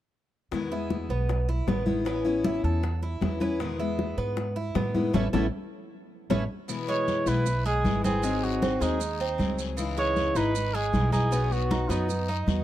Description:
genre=latin, Cuban son and guajira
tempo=156 BPM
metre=4/4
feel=straight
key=E major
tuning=A4 = 440 Hz
part: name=picked steel-string acoustic guitar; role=accompaniment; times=0.5-12.6 s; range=B2 to G#4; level=-30 LUFS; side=left 4 dB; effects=none
part: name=upright bass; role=bass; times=0.5-12.6 s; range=G#1 to A2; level=-29 LUFS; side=right 1 dB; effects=none
part: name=bongos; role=percussion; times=0.5-6.4 s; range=none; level=-34 LUFS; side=left 7 dB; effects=none
part: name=congas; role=percussion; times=0.5-12.6 s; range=none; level=-31 LUFS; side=equal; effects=none
part: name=Cuban tres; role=arpeggios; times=0.7-12.6 s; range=G#3 to B4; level=-33 LUFS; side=right 5 dB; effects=none
part: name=guiro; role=percussion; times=6.7-12.6 s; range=none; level=-43 LUFS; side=left 16 dB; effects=none
part: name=maracas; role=percussion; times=6.7-12.6 s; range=none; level=-43 LUFS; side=right 19 dB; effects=none
part: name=breathy trumpet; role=melody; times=6.9-12.6 s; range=D#4 to C#5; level=-29 LUFS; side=right 1 dB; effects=none
room=small room ambience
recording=dry, close 1970s-style studio recording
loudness=-24 LUFS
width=side -13 dB against mid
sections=0.5-6.7 A section; 6.7-12.6 B section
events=band accent 5.1-6.7; drum fill 5.5-6.7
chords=0.5 Emaj7; 2.1 Aadd9; 3.6 Emaj7; 5.1 Aadd9; 6.7 E; 8.2 G#7; 9.8 C#madd9; 11.3 B

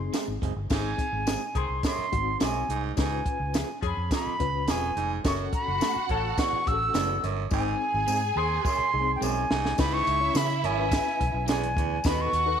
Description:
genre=uptempo 1960s-style soul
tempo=106 BPM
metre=4/4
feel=straight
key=C# minor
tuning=A4 = 441 Hz
part: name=reedy concert flute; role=melody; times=0.0-12.6 s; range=G5 to E6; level=-28 LUFS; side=equal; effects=slapback echo
part: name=barky reed electric piano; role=accompaniment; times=0.0-12.6 s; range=A3 to C#5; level=-35 LUFS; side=left 13 dB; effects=overdrive, fast tremolo
part: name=vintage muted fingered electric bass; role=bass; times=0.0-12.5 s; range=E1 to C#3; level=-31 LUFS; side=equal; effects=none
part: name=electric guitar through a small old amp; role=stabs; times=0.1-11.6 s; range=E3 to A4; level=-38 LUFS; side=right 12 dB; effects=none
part: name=compact cocktail drum kit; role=drums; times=0.1-12.5 s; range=crash cymbal, hi-hat, kick drum, snare drum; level=-29 LUFS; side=equal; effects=none
part: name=tambourine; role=percussion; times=0.1-12.2 s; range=none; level=-41 LUFS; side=left 14 dB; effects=none
part: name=clear saxophone section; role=second line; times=0.7-8.8 s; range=D#3 to A4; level=-36 LUFS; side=left 13 dB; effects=none
part: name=raspy baritone saxophone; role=riff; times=0.7-12.4 s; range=E2 to B2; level=-34 LUFS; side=right 12 dB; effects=none
part: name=warm studio violin section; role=second line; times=5.2-12.6 s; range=E4 to G#5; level=-34 LUFS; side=right 9 dB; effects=none
room=light reverb, studio reverb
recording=1960s-style stereo with parts hard left and right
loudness=-24 LUFS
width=side -8 dB against mid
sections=0.7-9.8 A section; 9.8-12.6 B section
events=drum fill 7.5-9.8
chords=0.0 G#; 3.0 C#7; 5.2 F#m; 7.5 G#; 9.8 C#m7; 12.0 B7

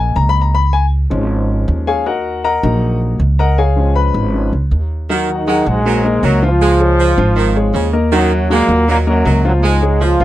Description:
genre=latin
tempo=158 BPM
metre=4/4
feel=straight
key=Eb minor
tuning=A4 = 440 Hz
part: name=warm grand piano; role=accompaniment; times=0.0-10.2 s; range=F3 to Cb6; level=-17 LUFS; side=left 4 dB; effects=none
part: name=upright bass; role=bass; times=0.0-10.2 s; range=Ab1 to Eb2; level=-15 LUFS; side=right 1 dB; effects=none
part: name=edgy saxophone section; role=second line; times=5.1-10.2 s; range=Db3 to Ab3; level=-19 LUFS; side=right 6 dB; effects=none
part: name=bright trombone section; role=melody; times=5.3-10.2 s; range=Gb2 to F4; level=-16 LUFS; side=equal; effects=none
room=little or no reverb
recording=dry, close 1970s-style studio recording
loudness=-12 LUFS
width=side -14 dB against mid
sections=0.0-5.1 A section; 5.1-10.2 B section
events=grand piano solo 0.0-5.1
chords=0.0 Ebm; 0.5 Db; 2.1 Ebm; 3.6 Db; 5.1 Ebm; 6.6 Db; 8.1 Ebm; 9.6 Db

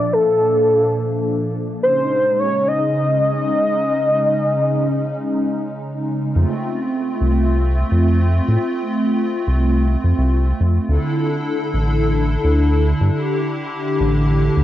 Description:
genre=IDM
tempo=106 BPM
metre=4/4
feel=straight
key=unclear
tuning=A4 = 437 Hz
part: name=warm velvety synth lead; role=melody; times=0.0-5.8 s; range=A4 to Eb5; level=-17 LUFS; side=equal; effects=chorus, cassette tape, analog delay
part: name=hollow soft pad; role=sustained chords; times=0.0-14.6 s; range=Bb2 to A4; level=-20 LUFS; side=equal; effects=ensemble chorus, cassette tape
part: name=round analog bass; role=bass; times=6.4-14.6 s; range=A1 to A2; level=-16 LUFS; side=equal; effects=tube saturation
room=moderate small room reverb, RT60 0.5 s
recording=home recording on cassette, low-pass filter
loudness=-16 LUFS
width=side -13 dB against mid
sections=0.0-6.4 A section; 6.4-14.6 B section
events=none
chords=0.0 Bb; 1.8 Dbsus2; 6.4 F; 10.9 Dsus2

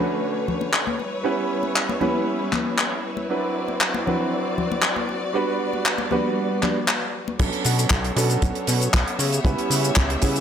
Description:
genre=nu-disco, nu disco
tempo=117 BPM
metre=4/4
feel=straight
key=B minor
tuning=A4 = 440 Hz
part: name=clear grand piano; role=accompaniment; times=0.0-10.4 s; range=F#3 to D5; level=-26 LUFS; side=right 3 dB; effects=sidechain pumping, ping-pong delay
part: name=rich symphonic string section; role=sustained chords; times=0.0-10.4 s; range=D3 to E5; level=-28 LUFS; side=left 2 dB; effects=sidechain pumping
part: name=congas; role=percussion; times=0.5-7.4 s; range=none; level=-29 LUFS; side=left 4 dB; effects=none
part: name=damped 70s drum kit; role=drums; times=0.7-10.4 s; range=cabasa, crash cymbal, handclaps, hi-hat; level=-24 LUFS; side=left 1 dB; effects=none
part: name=chorused synth bass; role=bass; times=7.4-10.4 s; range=B1 to C#3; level=-23 LUFS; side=equal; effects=sidechain pumping
part: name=kick drum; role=drums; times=7.4-10.3 s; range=none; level=-21 LUFS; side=equal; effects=none
room=light reverb, small room ambience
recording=none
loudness=-20 LUFS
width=side -8 dB against mid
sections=0.0-7.4 A section; 7.4-10.4 B section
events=drop 7.4-10.4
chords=0.0 Bm9; 1.0 C#m7b5; 3.3 D13; 5.3 Gmaj7; 7.4 Bm9; 9.2 C#m7b5

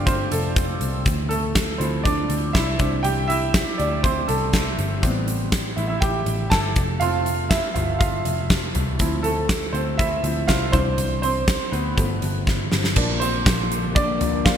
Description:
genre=piano-driven pop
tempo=121 BPM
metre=4/4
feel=straight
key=unclear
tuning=A4 = 441 Hz
part: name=clear concert grand piano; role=accompaniment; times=0.0-14.6 s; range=E3 to A5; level=-24 LUFS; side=right 2 dB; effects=lush chorus
part: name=vintage muted picked electric bass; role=bass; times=0.0-14.6 s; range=F1 to D2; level=-26 LUFS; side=left 1 dB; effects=none
part: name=huge arena drum kit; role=drums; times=0.1-14.6 s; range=crash cymbal, hi-hat, kick drum, snare drum, toms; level=-22 LUFS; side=equal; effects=gated reverb
part: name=warm studio string section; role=sustained chords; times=13.0-14.6 s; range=D3 to Bb3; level=-28 LUFS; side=left 5 dB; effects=none
room=light reverb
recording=bright 1980s-style digital production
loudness=-19 LUFS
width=side -9 dB against mid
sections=0.0-13.0 A section; 13.0-14.6 B section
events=grand piano solo 0.0-13.0, 13.0-14.6; drum fill 12.5-13.0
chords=0.0 F; 1.1 Dm7; 2.8 Cadd9; 5.0 Am7; 6.8 F; 9.0 Dm7; 10.7 Cadd9; 12.0 G7; 13.0 Bb

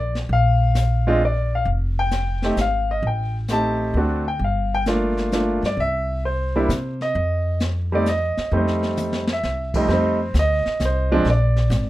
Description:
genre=jazz piano trio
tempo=131 BPM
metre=3/4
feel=swing 68% on 8ths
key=F mixolydian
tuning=A4 = 440 Hz
part: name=clear grand piano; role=melody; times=0.0-11.9 s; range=F2 to A5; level=-21 LUFS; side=equal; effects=none
part: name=upright bass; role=bass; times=0.0-11.9 s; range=F1 to C3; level=-22 LUFS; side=equal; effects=none
part: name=jazz brush drum kit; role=drums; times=0.2-11.9 s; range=brushed snare drum, crash cymbal, hi-hat, kick drum, snare drum, toms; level=-29 LUFS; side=equal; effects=none
room=moderate small room reverb, RT60 0.6 s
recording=rough home demo mix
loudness=-18 LUFS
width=side -16 dB against mid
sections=0.0-9.9 A section; 9.9-11.9 B section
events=drum fill 9.0-9.4; grand piano solo 9.9-11.9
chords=0.0 Bb; 1.7 N.C.; 3.0 Am7b5; 4.0 D7; 4.4 Gm7; 5.8 C; 7.2 F7; 9.4 C; 9.9 F7; 11.3 Bb7

